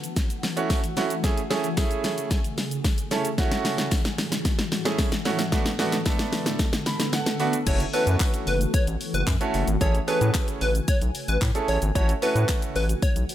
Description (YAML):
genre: dance-pop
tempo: 112 BPM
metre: 4/4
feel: straight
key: F# minor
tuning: A4 = 441 Hz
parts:
  - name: shimmering ambient pad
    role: sustained chords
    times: 0.0-13.3 s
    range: A2 to G#5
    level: -32 LUFS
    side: left 1 dB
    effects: chorus, built-in reverb, phaser, sidechain pumping
  - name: pop drum kit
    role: drums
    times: 0.0-13.3 s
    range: crash cymbal, handclaps, hi-hat, kick drum, shaker, snare drum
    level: -25 LUFS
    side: equal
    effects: none
  - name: tambourine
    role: percussion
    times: 0.2-13.3 s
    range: none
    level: -43 LUFS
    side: left 8 dB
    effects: none
  - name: clear grand piano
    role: accompaniment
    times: 0.6-12.8 s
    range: A3 to B5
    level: -28 LUFS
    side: right 4 dB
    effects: sidechain pumping
  - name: plucky unison lead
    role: melody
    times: 7.7-13.1 s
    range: B4 to C#5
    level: -28 LUFS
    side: equal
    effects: sidechain pumping
  - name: round analog bass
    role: bass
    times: 7.7-13.3 s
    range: F#1 to A2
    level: -24 LUFS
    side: equal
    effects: sidechain pumping
room: light reverb, digital ambience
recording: none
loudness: -22 LUFS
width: side -12 dB against mid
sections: 0.0-7.7 A section; 7.7-13.3 B section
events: build-up 0.0-7.7; drum fill 0.0-7.7; grand piano fill 6.6-7.7; drop 7.7-13.3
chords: 0.0 F#m7; 1.2 Amaj7; 3.4 F#m7/A; 5.5 Bm7; 7.7 F#m7; 9.8 Amaj7; 12.0 F#m7/A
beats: 0.17 0.70 | 1.24 1.77 2.31 2.85 | 3.38 3.92 4.45 4.99 | 5.52 6.06 6.60 7.13 | 7.67 8.20 8.74 9.27 | 9.81 10.35 10.88 11.42 | 11.95 12.49 13.02